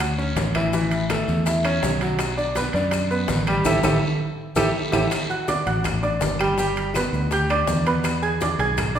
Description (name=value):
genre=latin, salsa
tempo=164 BPM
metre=4/4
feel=straight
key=D major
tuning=A4 = 441 Hz
part: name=clear concert grand piano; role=accompaniment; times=0.0-9.0 s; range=E3 to G#6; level=-23 LUFS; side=right 1 dB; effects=none
part: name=fingered electric bass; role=bass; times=0.0-9.0 s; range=G1 to F#2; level=-25 LUFS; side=left 1 dB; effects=none
part: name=bongos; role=percussion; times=0.0-9.0 s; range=none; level=-32 LUFS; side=left 4 dB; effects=none
part: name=claves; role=percussion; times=0.0-9.0 s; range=none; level=-34 LUFS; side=left 4 dB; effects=none
part: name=congas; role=percussion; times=0.0-9.0 s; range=none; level=-30 LUFS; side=equal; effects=none
part: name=guiro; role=percussion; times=0.0-5.0 s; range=none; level=-36 LUFS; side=left 2 dB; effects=none
part: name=timbales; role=percussion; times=0.0-9.0 s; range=none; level=-31 LUFS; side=right 4 dB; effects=none
part: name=maracas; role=percussion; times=0.2-9.0 s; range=none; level=-36 LUFS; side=left 5 dB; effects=none
room=wet recital hall reverb, RT60 1.5 s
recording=recorded in a church or concert hall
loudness=-20 LUFS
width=side -9 dB against mid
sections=0.0-5.1 A section; 5.1-9.0 A section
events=band accent 3.7-5.1; drum fill 4.0-5.1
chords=0.0 Dmaj7; 0.7 A; 2.2 Bm; 3.7 A5; 5.1 D; 6.6 G; 8.0 E7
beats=0.00 0.37 | 0.73 1.10 1.46 1.83 | 2.19 2.56 2.92 3.29 | 3.65 4.02 4.39 4.75 | 5.12 5.48 5.85 6.21 | 6.58 6.95 7.31 7.68 | 8.04 8.41 8.78